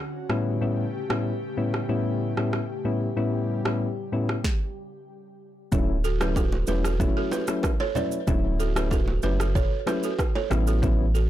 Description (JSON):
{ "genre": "afrobeats", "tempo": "94 BPM", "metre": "4/4", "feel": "straight", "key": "D major", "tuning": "A4 = 440 Hz", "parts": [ { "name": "airy breathy pad", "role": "sustained chords", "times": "0.0-4.4 s", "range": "C#3 to G4", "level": "-34 LUFS", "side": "equal", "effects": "chorus, plate reverb" }, { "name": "soft electric-piano-like synth keys", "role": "accompaniment", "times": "0.3-11.1 s", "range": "A2 to E4", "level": "-27 LUFS", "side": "left 3 dB", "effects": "chorus, plate reverb" }, { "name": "afro-pop drum kit", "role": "drums", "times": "0.3-11.3 s", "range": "kick drum, rim click, shaker, snare drum", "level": "-27 LUFS", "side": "equal", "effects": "soft clipping on snare" }, { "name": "saturated sub bass", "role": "bass", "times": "5.7-11.3 s", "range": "D1 to A1", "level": "-25 LUFS", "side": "equal", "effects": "none" }, { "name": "congas and bongos", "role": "percussion", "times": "5.7-11.0 s", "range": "none", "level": "-33 LUFS", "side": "right 2 dB", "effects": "none" }, { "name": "balafon", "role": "riff", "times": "6.0-11.3 s", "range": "F#4 to D5", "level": "-30 LUFS", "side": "right 7 dB", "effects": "ping-pong delay" } ], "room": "light reverb", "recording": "blown-out, overdriven recording, overdrive", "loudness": "-23 LUFS", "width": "side -12 dB against mid", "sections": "0.0-5.7 A section; 5.7-11.3 B section", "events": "stop 4.4-5.7", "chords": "0.3 A7; 5.7 Dmaj7; 10.5 A7" }